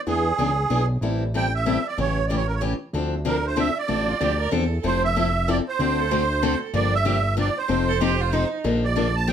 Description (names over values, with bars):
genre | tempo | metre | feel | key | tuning
acoustic string swing (jazz manouche) | 189 BPM | 3/4 | swing 60% on 8ths | D minor, F major from 4.8 s | A4 = 441 Hz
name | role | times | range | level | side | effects
musette accordion | melody | 0.1-9.3 s | G#4 to A5 | -24 LUFS | right 5 dB | none
picked steel-string acoustic guitar | accompaniment | 0.1-9.3 s | C#3 to A4 | -25 LUFS | left 5 dB | none
fat analog bass | bass | 0.1-9.3 s | F1 to E2 | -24 LUFS | equal | none
rich violin | second line | 4.1-8.7 s | Eb4 to C5 | -29 LUFS | right 7 dB | none
room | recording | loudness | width
moderate studio reverb, RT60 0.6 s | none | -20 LUFS | side -8 dB against mid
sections
0.0-4.8 A section; 4.8-9.3 B section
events
none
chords
0.1 E7; 1.0 Am7; 2.0 A7; 2.9 Dm9; 4.8 Fmaj7; 5.8 D7; 6.7 Gm7; 7.7 F7; 8.6 Bbmaj7